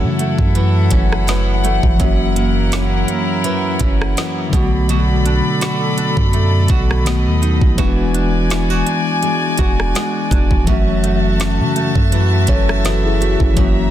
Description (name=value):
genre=contemporary R&B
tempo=83 BPM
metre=4/4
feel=swing 54% on 16ths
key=F# minor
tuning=A4 = 442 Hz
part: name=mellow tine electric piano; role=accompaniment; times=0.0-13.9 s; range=D3 to C#5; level=-20 LUFS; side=left 4 dB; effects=medium stereo tremolo
part: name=rich chamber string section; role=sustained chords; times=0.0-13.9 s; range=E4 to B5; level=-22 LUFS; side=left 2 dB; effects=none
part: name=nylon-string guitar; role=arpeggios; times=0.0-13.9 s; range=F#2 to F#4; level=-23 LUFS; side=right 7 dB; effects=ping-pong delay
part: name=clean 808-style bass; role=bass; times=0.0-13.9 s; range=E1 to C#3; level=-17 LUFS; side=equal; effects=none
part: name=trap drum kit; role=drums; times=0.2-13.7 s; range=hi-hat, kick drum, rim click, snare drum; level=-18 LUFS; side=equal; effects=none
room=little or no reverb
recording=dense, heavily limited modern master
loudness=-13 LUFS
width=side -12 dB against mid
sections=0.0-13.9 A section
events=none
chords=0.0 F#m7; 2.0 F#7; 4.5 Bm7; 7.1 B7; 7.8 E9; 10.7 F#m7